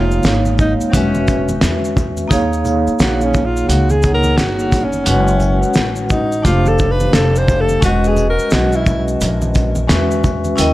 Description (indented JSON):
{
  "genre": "hip hop, jazz-hop",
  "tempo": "87 BPM",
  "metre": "4/4",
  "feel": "swing 62% on 16ths",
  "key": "unclear",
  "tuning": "A4 = 442 Hz",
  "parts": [
    { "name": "breathy alto saxophone", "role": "melody", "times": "0.0-9.1 s", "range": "C4 to C5", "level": "-20 LUFS", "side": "equal", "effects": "tape echo" },
    { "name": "vibraphone with medium hard mallets", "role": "accompaniment", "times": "0.0-10.7 s", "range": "F#3 to G5", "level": "-18 LUFS", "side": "equal", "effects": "none" },
    { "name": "upright bass", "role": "bass", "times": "0.0-10.7 s", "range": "E1 to E2", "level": "-18 LUFS", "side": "equal", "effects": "none" },
    { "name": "maracas and congas", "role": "percussion", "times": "0.1-10.7 s", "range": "none", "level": "-27 LUFS", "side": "right 1 dB", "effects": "none" },
    { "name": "cloth-damped thuddy drum kit", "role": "drums", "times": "0.2-10.7 s", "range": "hi-hat, kick drum, shaker, snare drum", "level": "-17 LUFS", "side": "equal", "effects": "none" }
  ],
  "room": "small room ambience",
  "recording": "dry, gritty hardware recording",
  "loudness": "-12 LUFS",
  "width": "side -16 dB against mid",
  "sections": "0.0-2.3 A section; 2.3-10.7 B section",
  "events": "alto saxophone solo 2.3-10.7",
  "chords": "0.0 Bbm11; 0.9 E69; 2.3 Ebm7; 5.1 Gbmadd9; 6.4 Fadd9; 7.8 Emaj9"
}